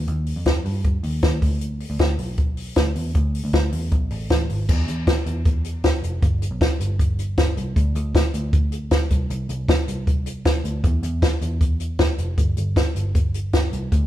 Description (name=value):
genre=jangly indie pop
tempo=156 BPM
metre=4/4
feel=straight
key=G mixolydian from 4.7 s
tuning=A4 = 438 Hz
part: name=vintage muted picked electric bass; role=bass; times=0.0-14.1 s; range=F1 to G2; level=-25 LUFS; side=equal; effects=none
part: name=compact cocktail drum kit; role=drums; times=0.1-14.0 s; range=crash cymbal, hi-hat, kick drum, snare drum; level=-20 LUFS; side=equal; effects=none
room=moderate large studio reverb, RT60 1.2 s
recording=band playing live in one room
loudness=-19 LUFS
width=side -13 dB against mid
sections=0.0-4.7 A section; 4.7-14.1 B section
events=none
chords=none